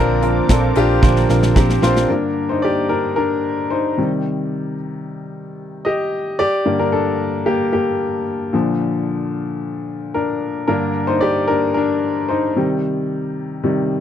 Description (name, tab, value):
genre	piano-driven pop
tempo	112 BPM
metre	4/4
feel	straight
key	G minor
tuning	A4 = 440 Hz
part	clear upright piano	accompaniment	0.0-14.0 s	G2 to Eb5	-18 LUFS	left 2 dB	none
part	warm analog pad	sustained chords	0.0-2.1 s	C5 to D6	-29 LUFS	right 4 dB	chorus
part	direct-recorded clean electric guitar	riff	0.0-2.1 s	Bb2 to Bb4	-22 LUFS	right 9 dB	none
part	hollow-body short-scale picked electric bass	bass	0.0-2.0 s	Bb1	-18 LUFS	right 1 dB	none
part	modern studio drum kit	drums	0.2-2.1 s	hi-hat, kick drum, snare drum	-17 LUFS	right 1 dB	none
room	little or no reverb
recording	dry, close 1970s-style studio recording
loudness	-16 LUFS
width	side -9 dB against mid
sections	0.0-2.1 A section; 2.1-14.0 B section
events	drum fill 1.0-2.1; upright piano solo 2.1-14.0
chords	0.0 Bbadd9; 2.1 Gm; 4.0 Cm; 6.4 Gmadd9; 8.5 Bb; 10.7 Gm; 12.6 Cm